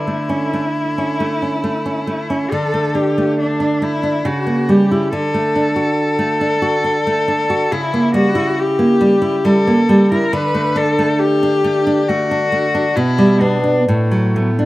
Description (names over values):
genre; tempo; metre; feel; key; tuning
romantic duo for cello and classical guitar; 68 BPM; 3/4; rubato; D major; A4 = 444 Hz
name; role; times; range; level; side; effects
rich cello; melody; 0.0-14.7 s; A3 to B4; -18 LUFS; left 2 dB; slapback echo
nylon-string guitar; accompaniment; 0.0-14.7 s; A2 to F#4; -15 LUFS; right 1 dB; none
room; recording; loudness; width
little or no reverb; recorded outdoors, with no room sound; -14 LUFS; side -17 dB against mid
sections
0.0-14.7 A section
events
none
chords
0.0 A/D; 2.5 D5; 4.2 C#dim7; 5.1 D; 7.7 C#dim7; 10.3 D; 13.0 G/B; 13.9 D/A (rootless)